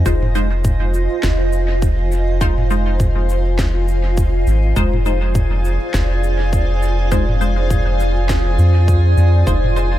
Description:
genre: ambient dub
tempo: 102 BPM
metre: 4/4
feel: swing 58% on 16ths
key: F dorian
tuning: A4 = 441 Hz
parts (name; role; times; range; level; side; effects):
- granular cloud pad; sustained chords; 0.0-10.0 s; F4 to Ab5; -22 LUFS; right 1 dB; built-in reverb
- filtered dub chord stab; stabs; 0.0-9.9 s; Ab3 to C5; -26 LUFS; left 2 dB; phaser, wide subtle chorus, dub echo
- soft dub sub bass; bass; 0.0-10.0 s; F1 to F2; -16 LUFS; equal; tube saturation
- electronic kick drum; drums; 0.1-9.6 s; none; -19 LUFS; equal; none
- organic electronic drum kit; drums; 0.1-9.9 s; shaker, snare drum, toms; -27 LUFS; equal; dub echo
- drifting glass-harmonics texture; texture; 5.3-10.0 s; Ab4 to Ab5; -28 LUFS; right 1 dB; chorus, built-in reverb
room: little or no reverb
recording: none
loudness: -14 LUFS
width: side -13 dB against mid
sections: 0.0-10.0 A section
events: none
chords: 0.0 Fm7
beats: | 0.06 0.65 1.23 1.82 | 2.41 3.00 3.59 4.17 | 4.76 5.35 5.94 6.53 | 7.12 7.70 8.29 8.88 | 9.47

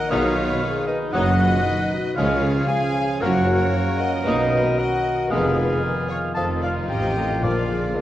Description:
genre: classical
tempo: 115 BPM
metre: 4/4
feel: rubato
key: unclear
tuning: A4 = 439 Hz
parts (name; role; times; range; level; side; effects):
- rich studio violin section; second line; 0.0-8.0 s; Bb4 to F5; -30 LUFS; left 1 dB; none
- warm clarinet; second line; 0.0-8.0 s; D5 to A5; -26 LUFS; left 1 dB; none
- mellow French horn section; sustained chords; 0.0-8.0 s; D#4 to B4; -28 LUFS; left 3 dB; none
- warm trombone section; sustained chords; 0.0-8.0 s; D3 to D#4; -30 LUFS; right 3 dB; none
- concert harp; arpeggios; 0.0-8.0 s; F2 to D#6; -30 LUFS; left 5 dB; none
- bright trumpet; stabs; 0.0-8.0 s; F4 to B4; -32 LUFS; equal; none
- rich studio violin section; melody; 0.1-8.0 s; Db4 to D#4; -35 LUFS; left 2 dB; none
- concert flute; second line; 0.1-7.7 s; D6 to F6; -34 LUFS; left 2 dB; none
- warm cor anglais; second line; 0.1-8.0 s; D4 to A4; -32 LUFS; right 1 dB; none
- rich symphonic viola section; accompaniment; 0.1-8.0 s; D#3 to C4; -32 LUFS; right 1 dB; none
- warm bassoon; accompaniment; 0.1-7.6 s; F3 to Bb3; -32 LUFS; equal; none
- mellow tuba; bass; 0.1-8.0 s; F1 to D2; -29 LUFS; right 2 dB; none
- rich symphonic cello section; bass; 0.1-8.0 s; F2 to D3; -28 LUFS; right 1 dB; none
- rich symphonic double bass section; bass; 0.1-8.0 s; F1 to D2; -28 LUFS; right 2 dB; none
- timpani; percussion; 7.4-8.0 s; Bb2; -28 LUFS; left 2 dB; none
room: wet scoring stage reverb, RT60 1.6 s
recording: worn, warbling old tape, cassette tape, warbly pitch drift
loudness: -19 LUFS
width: side -13 dB against mid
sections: 0.0-8.0 A section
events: none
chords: 0.1 B; 2.2 Db; 3.2 Gbmaj7; 4.3 Bmaj7; 5.3 Fm7b5; 6.4 F7; 7.4 Bb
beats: | 0.10 0.61 1.14 1.66 | 2.17 2.69 3.21 3.73 | 4.25 4.78 5.30 5.83 | 6.36 6.89 7.42 7.96

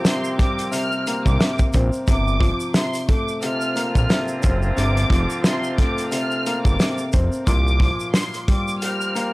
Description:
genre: hip hop, boom-bap hip-hop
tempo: 89 BPM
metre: 4/4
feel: swing 57% on 16ths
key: G minor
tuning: A4 = 440 Hz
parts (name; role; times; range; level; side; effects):
- dark grand piano; accompaniment; 0.0-9.3 s; Bb2 to C4; -25 LUFS; left 1 dB; cassette tape, high-pass filter, low-pass filter
- edgy saxophone section; stabs; 0.0-9.3 s; D3 to G4; -30 LUFS; right 1 dB; high-pass filter, low-pass filter, tape echo
- warm soul drum kit; drums; 0.0-9.3 s; hi-hat, kick drum, snare drum; -19 LUFS; equal; none
- warm studio violin section; melody; 0.1-9.3 s; C6 to F6; -27 LUFS; equal; high-pass filter, low-pass filter
- tube shaker; percussion; 0.1-9.3 s; none; -39 LUFS; right 3 dB; none
- fat analog bass; bass; 1.3-7.9 s; F1 to C2; -20 LUFS; equal; transformer saturation
room: small room ambience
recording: dry, gritty hardware recording, transformer saturation, vinyl crackle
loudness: -18 LUFS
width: side -20 dB against mid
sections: 0.0-9.3 A section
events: none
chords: 0.0 C7sus4; 2.1 Gm11; 7.5 C7sus4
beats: 0.05 0.73 1.40 | 2.08 2.75 3.42 4.10 | 4.77 5.45 6.12 6.80 | 7.47 8.14 8.82

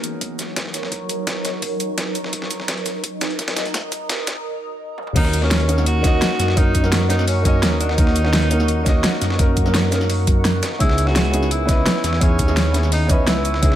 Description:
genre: liquid drum and bass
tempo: 170 BPM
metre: 4/4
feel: straight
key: Eb phrygian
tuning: A4 = 439 Hz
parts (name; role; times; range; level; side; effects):
- dark grand piano; accompaniment; 0.0-13.8 s; Bb3 to Eb5; -24 LUFS; equal; low-pass filter
- shimmering ambient pad; sustained chords; 0.0-13.8 s; Gb3 to Eb6; -28 LUFS; right 1 dB; chorus, built-in reverb, phaser, sidechain pumping
- dusty soul sampler-style drum kit; drums; 0.0-13.8 s; hi-hat, snare drum; -27 LUFS; equal; high-pass filter on snare, high-pass filter on hats
- pop drum kit; drums; 0.0-13.7 s; crash cymbal, hi-hat, shaker, snare drum, toms; -23 LUFS; right 1 dB; overdrive
- electronic kick drum; drums; 0.2-13.7 s; none; -18 LUFS; equal; overdrive, high-pass filter on kick, high-pass filter on room
- breathy tenor saxophone; melody; 5.2-13.8 s; Db4 to Gb4; -24 LUFS; equal; dub echo
- dark detuned saw bass; bass; 5.2-13.8 s; Db2 to Gb2; -20 LUFS; equal; none
room: light reverb, digital ambience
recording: high-pass filter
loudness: -16 LUFS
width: side -12 dB against mid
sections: 0.0-5.2 A section; 5.2-13.8 B section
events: build-up 0.0-5.2; filter sweep on grand piano 0.0-5.2; filter sweep on ambient pad 0.0-5.2; drum fill 2.3-4.5, 5.0; break 4.5-5.2; drop 5.2-13.8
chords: 0.0 Ebm7; 10.6 Dbm7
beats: 0.21 0.57 | 0.92 1.27 1.63 1.98 | 2.33 2.69 3.04 3.39 | 3.74 4.10 4.45 4.80 | 5.16 5.51 5.86 6.21 | 6.57 6.92 7.27 7.63 | 7.98 8.33 8.69 9.04 | 9.39 9.74 10.10 10.45 | 10.80 11.16 11.51 11.86 | 12.21 12.57 12.92 13.27 | 13.63

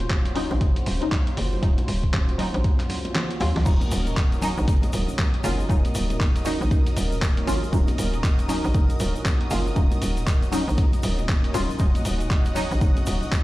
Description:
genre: deep house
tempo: 118 BPM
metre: 4/4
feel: swing 60% on 16ths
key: Eb dorian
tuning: A4 = 440 Hz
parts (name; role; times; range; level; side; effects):
- warm analog pad; sustained chords; 0.0-13.4 s; Db4 to Eb5; -33 LUFS; equal; chorus, vintage 12-bit sampler grit, sidechain pumping
- filtered dub chord stab; stabs; 0.0-13.2 s; Gb3 to F4; -30 LUFS; equal; phaser, lush chorus, sidechain pumping, tape echo
- hollow knocking FM bass; bass; 0.0-13.2 s; Eb1 to Eb2; -26 LUFS; equal; tube saturation
- dusty soul sampler-style drum kit; drums; 0.0-13.4 s; crash cymbal, handclaps, hi-hat, snare drum; -31 LUFS; equal; none
- electronic kick drum; drums; 0.1-13.4 s; none; -21 LUFS; equal; none
- congas; percussion; 0.2-13.4 s; none; -34 LUFS; right 1 dB; none
- egg shaker; percussion; 3.7-13.4 s; none; -42 LUFS; left 3 dB; none
- string machine, violins; texture; 3.7-13.4 s; Eb5 to Eb6; -39 LUFS; equal; ensemble chorus, sidechain pumping
room: digital ambience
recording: played on a big sound system in a bare room, large studio reverb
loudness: -20 LUFS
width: side -17 dB against mid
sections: 0.0-3.7 A section; 3.7-13.4 B section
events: kick drops out 3.2-3.7; drum fill 3.2-3.7; drop 3.7-13.4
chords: 0.0 Ebm7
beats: 0.10 0.61 1.12 | 1.63 2.13 2.64 3.15 | 3.66 4.17 4.68 5.19 | 5.70 6.20 6.71 7.22 | 7.73 8.24 8.75 9.25 | 9.76 10.27 10.78 11.29 | 11.80 12.30 12.81 13.32

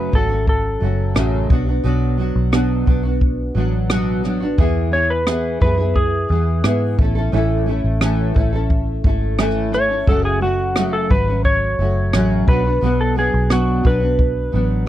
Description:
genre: acoustic pop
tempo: 88 BPM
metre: 4/4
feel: straight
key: unclear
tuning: A4 = 440 Hz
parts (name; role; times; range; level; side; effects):
- clean lap steel guitar; melody; 0.0-14.9 s; F#4 to C#5; -20 LUFS; equal; none
- nylon-string guitar; accompaniment; 0.0-14.9 s; F#2 to A4; -21 LUFS; right 1 dB; double-tracked left and right
- vintage muted fingered electric bass; bass; 0.0-14.9 s; F#1 to G#2; -20 LUFS; equal; none
- jazz brush drum kit; drums; 0.1-14.3 s; kick drum, rim click; -18 LUFS; equal; none
room: little or no reverb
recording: dry, close 1970s-style studio recording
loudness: -15 LUFS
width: side -13 dB against mid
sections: 0.0-14.9 A section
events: none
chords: 0.0 F#m; 1.5 Bm; 4.6 E; 7.0 A; 10.1 F#m; 12.5 Bm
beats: 0.47 1.16 | 1.84 2.53 3.21 3.90 | 4.59 5.27 5.96 6.64 | 7.33 8.02 8.70 9.39 | 10.07 10.76 11.45 12.13 | 12.82 13.50 14.19 14.88

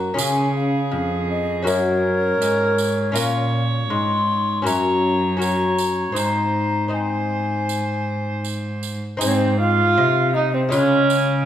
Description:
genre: classical, renaissance-style consort dance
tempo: 80 BPM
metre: 4/4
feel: straight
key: Ab mixolydian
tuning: A4 = 440 Hz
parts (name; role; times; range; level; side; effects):
- baroque flute; melody; 0.0-11.5 s; C5 to C6; -24 LUFS; left 4 dB; none
- rich viola; second line; 0.0-11.5 s; C4 to Db5; -23 LUFS; right 4 dB; none
- lute; accompaniment; 0.0-11.5 s; F2 to C5; -24 LUFS; left 3 dB; none
- dark cello; bass; 0.0-11.5 s; F2 to Db3; -24 LUFS; right 1 dB; none
- tambourine; percussion; 0.2-11.4 s; none; -30 LUFS; right 8 dB; none
room: moderate recital hall reverb, RT60 1.4 s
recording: none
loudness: -18 LUFS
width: side -10 dB against mid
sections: 0.0-9.2 A section; 9.2-11.5 B section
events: none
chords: 0.2 Db; 1.7 Gb; 3.2 Bbm; 4.7 Gb; 6.2 Ab; 10.7 Db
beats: | 0.17 0.92 1.67 2.41 | 3.16 3.91 4.66 5.41 | 6.17 6.93 7.69 8.45 | 9.21 9.97 10.72

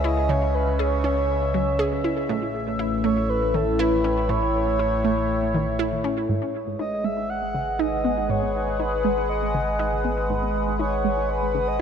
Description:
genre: ambient, sequencer-driven space music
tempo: 120 BPM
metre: 4/4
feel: straight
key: G# phrygian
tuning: A4 = 442 Hz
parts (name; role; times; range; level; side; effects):
- breathy flute-like synth lead; melody; 0.0-11.8 s; A4 to F#5; -27 LUFS; equal; chorus, analog delay
- sweeping resonant pad; sustained chords; 0.0-11.8 s; A2 to F#5; -26 LUFS; left 1 dB; chorus, phaser
- analog pluck; riff; 0.0-11.6 s; G#2 to G#4; -28 LUFS; right 2 dB; chorus, analog delay
- round analog bass; bass; 0.0-11.8 s; G#1 to C#2; -28 LUFS; equal; none
- bubbling stepped-filter texture; texture; 6.3-11.8 s; D#6; -45 LUFS; right 4 dB; none
room: wet plate reverb, RT60 3.0 s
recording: echo-heavy mix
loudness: -21 LUFS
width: side -7 dB against mid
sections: 0.0-6.3 A section; 6.3-11.8 B section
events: filter sweep on synth arpeggio sound 6.3-11.8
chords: 0.0 C#m7; 2.3 A; 6.3 G#m7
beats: | 0.30 0.80 1.30 1.80 | 2.30 2.80 3.30 3.80 | 4.30 4.80 5.30 5.80 | 6.30 6.80 7.30 7.80 | 8.30 8.80 9.30 9.80 | 10.30 10.80 11.30 11.80

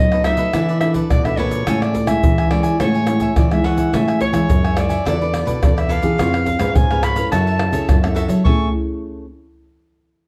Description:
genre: samba and choro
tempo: 106 BPM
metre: 4/4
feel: straight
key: A major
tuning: A4 = 440 Hz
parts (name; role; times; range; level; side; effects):
- mellow soprano saxophone; melody; 0.0-8.7 s; C#5 to C#6; -25 LUFS; equal; plate reverb
- cavaquinho; accompaniment; 0.0-8.7 s; D#4 to G#5; -29 LUFS; equal; none
- nylon-string guitar; accompaniment; 0.0-9.2 s; F#2 to A4; -28 LUFS; equal; none
- nylon-string guitar; bass; 0.0-8.7 s; E2 to F#3; -22 LUFS; equal; none
- egg shaker, pandeiro, tamborim and surdo; percussion; 0.1-8.6 s; none; -21 LUFS; equal; none
room: moderate large studio reverb, RT60 0.9 s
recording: dark, warm production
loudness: -17 LUFS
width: mono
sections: 0.0-3.9 A section; 3.9-8.5 B section; 8.5-10.3 C section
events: none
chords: 0.0 B7; 0.5 E7sus4; 1.7 Amaj7; 5.1 E7sus4; 6.2 C#7/E#; 7.3 F#m7; 8.5 Amaj7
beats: 0.54 1.10 | 1.67 2.23 2.80 3.37 | 3.93 4.50 5.06 5.63 | 6.19 6.76 7.32 7.89 | 8.45 9.02

